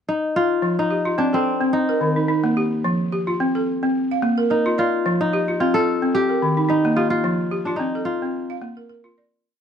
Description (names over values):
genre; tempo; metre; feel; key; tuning
west african traditional, West African string and xylophone music; 109 BPM; 4/4; swing 55% on 16ths; F mixolydian; A4 = 440 Hz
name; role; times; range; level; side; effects
kora; melody; 0.1-9.6 s; C4 to A4; -22 LUFS; left 2 dB; none
balafon; arpeggios; 0.6-9.6 s; Eb3 to F5; -20 LUFS; right 1 dB; none
room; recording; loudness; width
light reverb; dry, close 1970s-style studio recording; -18 LUFS; side -8 dB against mid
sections
0.0-0.6 pickup bar; 0.6-9.4 A section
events
fade-out 7.2-9.4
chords
0.0 N.C.; 0.6 F; 1.7 Eb; 2.8 F; 3.9 Bb; 5.0 F; 6.1 Eb; 7.2 F; 8.3 Bb